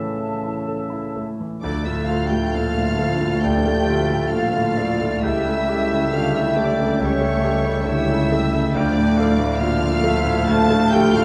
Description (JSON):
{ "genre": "classical", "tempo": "61-70 BPM", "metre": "4/4", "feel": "rubato", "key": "D minor", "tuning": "A4 = 441 Hz", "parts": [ { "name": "clear concert grand piano", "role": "melody", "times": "0.0-11.2 s", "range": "C#2 to A4", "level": "-24 LUFS", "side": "equal", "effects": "none" }, { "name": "bright large flute ensemble", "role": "second line", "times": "0.0-11.2 s", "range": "C#5 to A5", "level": "-32 LUFS", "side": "equal", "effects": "none" }, { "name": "warm clarinet", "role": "second line", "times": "0.0-11.1 s", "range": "A4 to G5", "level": "-31 LUFS", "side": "equal", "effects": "none" }, { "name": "warm oboe", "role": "second line", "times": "0.0-11.2 s", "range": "E5 to A5", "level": "-34 LUFS", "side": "equal", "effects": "none" }, { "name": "warm bassoon", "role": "accompaniment", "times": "0.0-11.2 s", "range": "C#3 to A3", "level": "-31 LUFS", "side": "equal", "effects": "none" }, { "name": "dark French horn section", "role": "sustained chords", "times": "0.0-11.2 s", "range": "E3 to A4", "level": "-29 LUFS", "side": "equal", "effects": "none" }, { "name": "warm symphonic violin section", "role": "melody", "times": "1.6-11.2 s", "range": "C#6 to A6", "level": "-35 LUFS", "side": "equal", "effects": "none" }, { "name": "warm symphonic violin section", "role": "second line", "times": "1.6-11.2 s", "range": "C#5 to A5", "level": "-34 LUFS", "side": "equal", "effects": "none" }, { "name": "warm symphonic viola section", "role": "accompaniment", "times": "1.6-11.2 s", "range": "F3 to A4", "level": "-32 LUFS", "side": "equal", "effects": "none" }, { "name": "clear trombone section", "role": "sustained chords", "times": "1.6-11.2 s", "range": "F3 to A3", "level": "-33 LUFS", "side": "equal", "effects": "none" }, { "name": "warm studio double bass section", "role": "bass", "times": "1.6-11.2 s", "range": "C#2 to D2", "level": "-32 LUFS", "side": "equal", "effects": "none" }, { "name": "warm symphonic cello section", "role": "bass", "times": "1.6-11.2 s", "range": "C#2 to D2", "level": "-32 LUFS", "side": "equal", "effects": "none" }, { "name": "warm tuba", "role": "bass", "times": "1.6-11.2 s", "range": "C#2 to D2", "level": "-32 LUFS", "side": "equal", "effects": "none" } ], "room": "wet scoring stage reverb, RT60 1.7 s", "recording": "dark, warm production", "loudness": "-20 LUFS", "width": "mono", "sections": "0.0-1.6 A section; 1.6-11.2 B section", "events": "none", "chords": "0.0 A; 1.6 Dm; 5.2 A7/C#; 8.8 Dm", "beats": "0.66 | 1.63 2.53 3.44 4.32 | 5.23 6.13 7.00 7.88 | 8.76 9.62 10.49" }